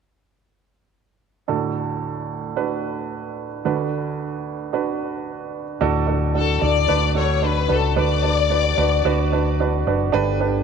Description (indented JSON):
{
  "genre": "pop",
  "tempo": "111 BPM",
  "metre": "4/4",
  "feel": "straight",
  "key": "D major",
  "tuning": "A4 = 445 Hz",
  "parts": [
    { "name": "warm baby grand piano", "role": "accompaniment", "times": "1.5-10.6 s", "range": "D2 to B4", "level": "-22 LUFS", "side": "right 7 dB", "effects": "none" },
    { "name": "hollow-body short-scale fingered electric bass", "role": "bass", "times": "5.8-10.6 s", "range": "F#1 to D2", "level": "-21 LUFS", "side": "left 2 dB", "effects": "none" },
    { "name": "rich studio violin section", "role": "melody", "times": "6.4-9.6 s", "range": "A4 to D5", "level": "-21 LUFS", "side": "left 12 dB", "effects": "none" }
  ],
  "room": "moderate plate reverb, RT60 2.6 s",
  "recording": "1960s-style stereo with parts hard left and right",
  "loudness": "-19 LUFS",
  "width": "side -6 dB against mid",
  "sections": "1.5-5.8 A section; 5.8-10.6 B section",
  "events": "none",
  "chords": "1.5 D; 3.6 Bm/D; 5.8 D; 8.0 Bm/D",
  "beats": "| 1.48 2.02 2.56 3.11 | 3.65 4.19 4.73 5.27 | 5.81 6.35 6.89 7.44 | 7.98 8.52 9.06 9.60 | 10.14"
}